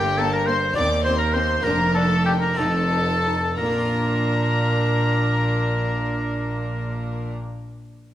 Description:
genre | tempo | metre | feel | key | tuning
classical, baroque-style concerto movement with solo episodes | 59-72 BPM (dotted quarters) | 6/8 | straight | Bb major | A4 = 440 Hz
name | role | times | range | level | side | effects
clear oboe | melody | 0.0-7.3 s | G4 to D5 | -25 LUFS | equal | none
rich chamber violin section | melody | 0.0-7.3 s | G5 to D6 | -32 LUFS | left 6 dB | none
rich chamber violin section | second line | 0.0-7.3 s | G4 to D5 | -28 LUFS | left 2 dB | none
harpsichord | accompaniment | 0.0-7.6 s | Eb2 to D5 | -31 LUFS | left 1 dB | none
warm chamber cello section | bass | 0.0-7.3 s | Eb2 to Bb2 | -27 LUFS | right 1 dB | none
warm chamber double bass section | bass | 0.0-7.3 s | F1 to Eb2 | -25 LUFS | right 1 dB | none
dark chamber viola section | accompaniment | 0.2-7.3 s | Bb3 to Eb4 | -30 LUFS | right 1 dB | none
room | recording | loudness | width
moderate recital hall reverb, RT60 1.3 s | none | -19 LUFS | side -12 dB against mid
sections
0.0-3.6 A section; 3.6-7.6 B section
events
slowing down 0.0-3.6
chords
0.0 Gm; 0.8 Cm/Eb; 1.6 Bb/F; 2.6 F7; 3.6 Bb

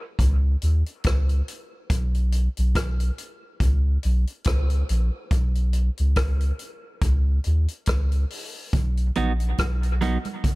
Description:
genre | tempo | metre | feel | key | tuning
dub reggae | 70 BPM | 4/4 | swing 57% on 16ths | B major | A4 = 440 Hz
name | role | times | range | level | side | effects
soft dub sub bass | bass | 0.2-10.2 s | A#1 to D#2 | -21 LUFS | equal | none
vintage drum kit | drums | 0.2-10.6 s | hi-hat, kick drum, rim click | -26 LUFS | equal | none
congas | percussion | 8.7-10.6 s | none | -34 LUFS | right 6 dB | dub echo
clean electric guitar | accompaniment | 9.2-10.2 s | F#3 to F#4 | -27 LUFS | right 5 dB | dub echo
room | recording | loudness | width
small room ambience | echo-heavy mix | -21 LUFS | side -22 dB against mid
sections
0.0-8.7 A section; 8.7-10.6 B section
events
break 0.0-8.7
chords
0.2 N.C.; 3.6 A#m; 5.3 Bsus2; 7.0 C#sus2; 8.7 B

